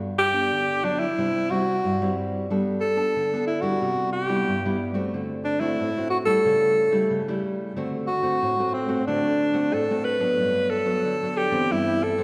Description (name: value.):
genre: samba.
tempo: 91 BPM.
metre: 4/4.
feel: straight.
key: G major.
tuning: A4 = 439 Hz.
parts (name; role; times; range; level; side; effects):
nylon-string guitar; accompaniment; 0.0-12.2 s; G2 to A4; -29 LUFS; equal; none.
breathy alto saxophone; melody; 0.2-12.2 s; C4 to B4; -25 LUFS; equal; none.
room: wet scoring stage reverb, RT60 2.0 s.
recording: recorded in a church or concert hall.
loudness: -24 LUFS.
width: mono.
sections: 0.0-12.2 A section.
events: none.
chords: 0.0 Gmaj7; 1.2 C; 2.5 Gadd9; 3.8 Cmaj7; 5.1 D7; 6.4 A7/C#; 7.8 D7; 10.4 Gmaj7; 11.7 Cmaj7/G.